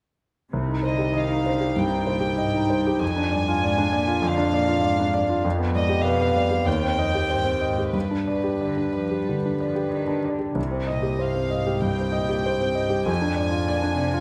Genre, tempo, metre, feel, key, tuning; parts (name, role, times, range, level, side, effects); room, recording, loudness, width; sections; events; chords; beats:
classical, romantic movement for piano and orchestra; 90-102 BPM; 4/4; rubato; C minor; A4 = 440 Hz
clear concert grand piano; melody; 0.5-14.2 s; C2 to Eb5; -25 LUFS; equal
warm symphonic cello section; bass; 0.5-14.2 s; Eb2 to G3; -34 LUFS; equal
rich chamber violin section; melody; 0.8-14.2 s; B4 to Ab5; -31 LUFS; equal
moderate scoring stage reverb, RT60 1.9 s; -23 LUFS; mono
0.5-14.2 A section
0.5 Cm; 3.0 Ddim/F; 5.5 G7/F; 6.7 Cm/Eb; 7.9 G; 10.6 Cm; 13.1 Ddim/F
| 0.53 1.16 1.78 2.40 | 3.02 3.63 4.24 4.85 | 5.45 6.05 6.67 7.30 | 7.94 8.60 9.25 9.91 | 10.57 11.21 11.85 12.47 | 13.09 13.69